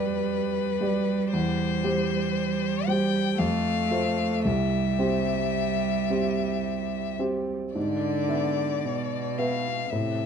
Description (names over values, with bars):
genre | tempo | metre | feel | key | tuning
classical, slow romantic movement for piano trio | 54-59 BPM | 3/4 | rubato | unclear | A4 = 440 Hz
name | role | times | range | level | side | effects
rich violin | melody | 0.0-10.3 s | B4 to G5 | -30 LUFS | left 11 dB | none
clear cello | second line | 0.0-10.3 s | B2 to A3 | -29 LUFS | right 8 dB | none
warm grand piano | accompaniment | 0.0-10.3 s | C2 to E5 | -27 LUFS | equal | none
room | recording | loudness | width
moderate large studio reverb, RT60 1.0 s | dark, warm production | -24 LUFS | side -7 dB against mid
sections
0.0-10.3 A section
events
none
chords
0.0 G7/F; 1.3 C/E; 3.4 F; 4.5 C; 7.8 E7/G#